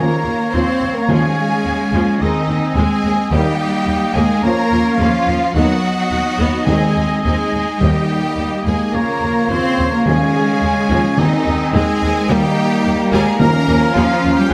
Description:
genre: cinematic, heroic adventure film score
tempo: 107 BPM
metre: 4/4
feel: straight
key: Eb mixolydian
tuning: A4 = 440 Hz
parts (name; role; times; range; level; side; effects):
- rich studio violin section; melody; 0.0-14.5 s; Eb5 to C6; -29 LUFS; equal; none
- bright clarinet; second line; 0.0-14.2 s; Bb3 to Db4; -28 LUFS; equal; none
- clear oboe; second line; 0.0-14.5 s; Db5 to F5; -27 LUFS; equal; none
- clear symphonic violin section; second line; 0.0-14.5 s; Eb4 to C5; -26 LUFS; equal; none
- flute section; second line; 0.0-14.5 s; D#5 to Bb5; -30 LUFS; equal; none
- rich studio viola section; accompaniment; 0.0-14.5 s; Db3 to Eb4; -26 LUFS; equal; none
- dark French horn section; sustained chords; 0.0-14.5 s; Db3 to F4; -26 LUFS; equal; none
- mellow trombone section; sustained chords; 0.0-14.5 s; Bb2 to Ab3; -29 LUFS; equal; none
- rich symphonic cello section; bass; 0.0-14.5 s; Eb3 to C4; -22 LUFS; equal; none
- rich symphonic double bass section; bass; 0.0-14.5 s; Eb2; -23 LUFS; equal; none
- timpani; percussion; 0.0-14.2 s; Eb3; -23 LUFS; equal; none
room: moderate scoring stage reverb, RT60 1.6 s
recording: none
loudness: -16 LUFS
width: mono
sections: 0.0-14.5 A section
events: none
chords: 0.0 Bbm/Eb; 1.1 Db; 2.2 Ab/Eb; 3.3 Eb; 4.4 Bbm/Eb; 5.6 B/D#; 6.7 Ab/Eb; 7.8 Eb; 8.9 Bbm/Eb; 10.1 Db; 11.2 Ab/Eb; 12.3 Eb; 13.4 Bbm/Eb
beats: 0.53 | 1.09 1.65 2.21 2.77 | 3.32 3.88 4.44 4.99 | 5.55 6.12 6.68 7.25 | 7.82 8.38 8.94 9.50 | 10.06 10.63 11.19 11.74 | 12.30 12.85 13.41 13.96 | 14.52

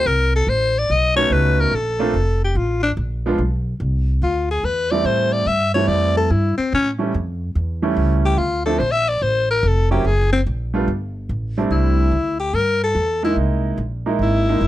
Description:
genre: jazz, small-group swing and bop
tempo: 144 BPM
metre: 4/4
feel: swing 67% on 8ths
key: unclear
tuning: A4 = 440 Hz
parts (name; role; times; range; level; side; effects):
- growling alto saxophone; melody; 0.0-14.7 s; C4 to E5; -19 LUFS; left 3 dB; none
- clear concert grand piano; accompaniment; 0.0-14.6 s; E3 to F#4; -21 LUFS; right 3 dB; none
- upright bass; bass; 0.0-14.7 s; F1 to A2; -20 LUFS; equal; none
room: little or no reverb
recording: close, detailed microphones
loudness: -17 LUFS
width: side -14 dB against mid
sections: 0.0-11.7 A section; 11.7-14.7 B section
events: alto saxophone solo 11.7-14.7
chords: 0.1 Am; 0.9 B9; 1.7 Bbmaj7; 3.4 E5; 5.1 Am7; 6.7 A7; 8.4 Dm9; 10.0 Gb; 10.9 Gsus2; 11.7 C69; 13.4 C7alt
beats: | 0.06 0.47 0.89 1.31 | 1.72 2.14 2.55 2.97 | 3.39 3.80 4.22 4.64 | 5.05 5.47 5.88 6.30 | 6.72 7.13 7.55 7.96 | 8.38 8.80 9.21 9.63 | 10.04 10.46 10.88 11.29 | 11.71 12.13 12.54 12.96 | 13.37 13.79 14.21 14.62

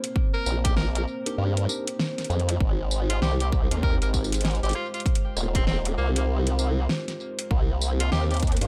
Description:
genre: glitch hop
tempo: 98 BPM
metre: 4/4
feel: swing 61% on 16ths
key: unclear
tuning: A4 = 441 Hz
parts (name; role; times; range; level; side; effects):
- dark analog pad; sustained chords; 0.0-8.7 s; Ab3 to C5; -38 LUFS; equal; chorus, sidechain pumping
- pop drum kit; drums; 0.0-8.7 s; hi-hat, rim click, snare drum, tambourine; -32 LUFS; equal; studio ambience
- electronic kick drum; drums; 0.2-8.6 s; none; -26 LUFS; equal; studio ambience
- edgy tenor saxophone; melody; 0.3-8.4 s; Bb3 to Bb4; -36 LUFS; equal; tape echo
- formant-sweep wobble bass; bass; 0.5-8.7 s; Eb1 to G2; -27 LUFS; equal; chorus
- mellow tine electric piano; stabs; 1.3-8.7 s; C4 to Bb4; -38 LUFS; equal; vintage 12-bit sampler grit, sidechain pumping, tape echo
room: light reverb, digital ambience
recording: echo-heavy mix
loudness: -25 LUFS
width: mono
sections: 0.0-8.7 A section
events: none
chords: 0.0 Cm7; 2.6 Abmaj7; 7.5 Cm7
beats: | 0.16 0.77 1.38 2.00 | 2.61 3.22 3.83 4.45 | 5.06 5.67 6.28 6.89 | 7.51 8.12

